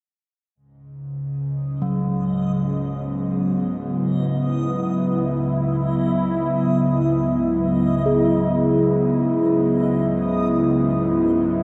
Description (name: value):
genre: dark ambient drone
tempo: free time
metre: none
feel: none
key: C# minor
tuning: A4 = 442 Hz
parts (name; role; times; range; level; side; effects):
- sweeping resonant pad; sustained chords; 0.6-11.6 s; C#3 to E4; -22 LUFS; equal; chorus
- bowed-like drone; drone; 1.0-11.6 s; C#2 to G#2; -34 LUFS; equal; built-in reverb
- backwards swelling texture; texture; 1.8-11.6 s; D#5; -36 LUFS; equal; built-in reverb
- quartz singing bowl; arpeggios; 1.8-11.6 s; F#3 to G#4; -28 LUFS; equal; diffuse ambient delay
room: wet cathedral reverb, RT60 5.3 s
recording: none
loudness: -21 LUFS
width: mono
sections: 0.6-11.6 A section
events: fade-in on synth drone 0.6-11.6; fade-in on synth texture 0.6-11.6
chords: 0.6 C#madd9